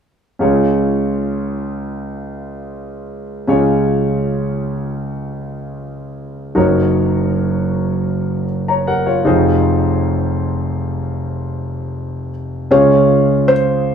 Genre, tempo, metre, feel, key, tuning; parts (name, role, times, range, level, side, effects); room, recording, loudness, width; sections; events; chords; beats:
pop; 78 BPM; 4/4; straight; Db major; A4 = 440 Hz
warm concert grand piano; accompaniment; 0.4-13.9 s; F1 to Bb5; -16 LUFS; equal
felt-muted upright piano; melody; 12.7-13.9 s; C5 to Db5; -13 LUFS; right 1 dB
wet large studio reverb, RT60 0.8 s; band playing live in one room; -14 LUFS; side -7 dB against mid
0.4-12.7 A section; 12.7-13.9 B section
0.4 Db; 6.6 Gb6; 9.2 Fm7; 12.7 Db
| 0.40 1.17 1.94 2.71 | 3.48 4.25 5.02 5.79 | 6.56 7.33 8.10 8.87 | 9.63 10.40 11.17 11.94 | 12.71 13.48